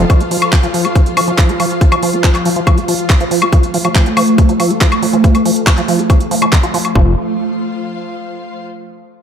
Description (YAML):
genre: psychedelic trance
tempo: 140 BPM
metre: 4/4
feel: straight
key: F major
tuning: A4 = 440 Hz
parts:
  - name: evolving wavetable pad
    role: sustained chords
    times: 0.0-7.0 s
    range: F3 to A4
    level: -17 LUFS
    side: right 1 dB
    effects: ensemble chorus, built-in reverb, phaser, sidechain pumping
  - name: liquid acid bass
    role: riff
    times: 0.0-7.2 s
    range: Eb3 to F4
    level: -18 LUFS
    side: moving between left 3 dB and right 3 dB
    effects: chorus, auto-pan, cassette tape, sidechain pumping, ping-pong delay
  - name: fat analog bass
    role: bass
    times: 0.0-0.1, 7.0-7.2 s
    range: F1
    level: -13 LUFS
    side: equal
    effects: tube saturation
  - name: rich studio string section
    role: texture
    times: 0.0-8.6 s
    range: F4 to F5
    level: -28 LUFS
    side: left 2 dB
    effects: sidechain pumping
  - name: electronic kick drum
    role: drums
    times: 0.1-7.0 s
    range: none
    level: -12 LUFS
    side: equal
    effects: none
  - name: garage drum kit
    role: drums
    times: 0.1-6.9 s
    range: handclaps, hi-hat, woodblock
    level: -17 LUFS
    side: left 1 dB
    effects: none
room: moderate plate reverb, RT60 2.0 s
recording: dreamy mix soaked in reverb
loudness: -10 LUFS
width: side -8 dB against mid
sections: 0.0-7.0 A section; 7.0-8.7 B section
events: filter sweep on acid bass 0.0-7.0; filter sweep on ambient pad 0.0-7.0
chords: 0.0 F5